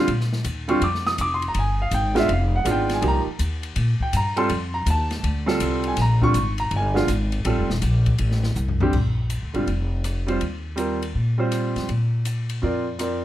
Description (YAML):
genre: jazz, small-group swing and bop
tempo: 163 BPM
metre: 4/4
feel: swing 65% on 8ths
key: Bb mixolydian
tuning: A4 = 440 Hz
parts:
  - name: clear baby grand piano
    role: accompaniment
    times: 0.0-13.2 s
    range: D3 to Eb6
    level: -23 LUFS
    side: right 1 dB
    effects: none
  - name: upright bass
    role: bass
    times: 0.1-13.2 s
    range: Eb1 to Bb2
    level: -23 LUFS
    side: equal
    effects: none
  - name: open jazz drum kit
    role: drums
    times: 0.1-13.1 s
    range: crash cymbal, hi-hat, kick drum, ride cymbal, rim click, snare drum, toms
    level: -31 LUFS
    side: left 2 dB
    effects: none
room: light reverb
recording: none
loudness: -20 LUFS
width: side -13 dB against mid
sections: 0.0-8.9 A section; 8.9-13.2 B section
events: drum fill 8.6-8.9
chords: 0.1 Bb; 1.6 G7b9; 3.0 Cm7; 4.5 F7; 6.0 Bb7; 6.7 G7b9; 7.5 F; 8.9 Bb; 10.4 Eb; 11.9 Bb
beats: | 0.08 0.45 0.81 1.18 | 1.55 1.92 2.29 2.66 | 3.03 3.40 3.77 4.13 | 4.50 4.87 5.24 5.61 | 5.98 6.35 6.72 7.08 | 7.45 7.82 8.19 8.56 | 8.93 9.30 9.67 10.04 | 10.41 10.78 11.15 11.52 | 11.89 12.26 12.63 13.00